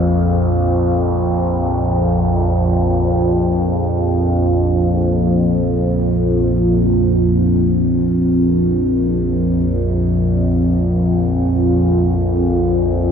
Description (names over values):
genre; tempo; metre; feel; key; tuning
ambient; free time; none; none; unclear; A4 = 440 Hz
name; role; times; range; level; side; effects
overtone-sweeping drone; solo; 0.0-13.1 s; Bb1 to F2; -14 LUFS; equal; chorus, built-in reverb
room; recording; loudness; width
wet huge ambient reverb, RT60 7.2 s; dark, warm production; -14 LUFS; side -7 dB against mid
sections
0.0-5.0 A section; 5.0-13.1 B section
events
none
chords
0.0 Bb5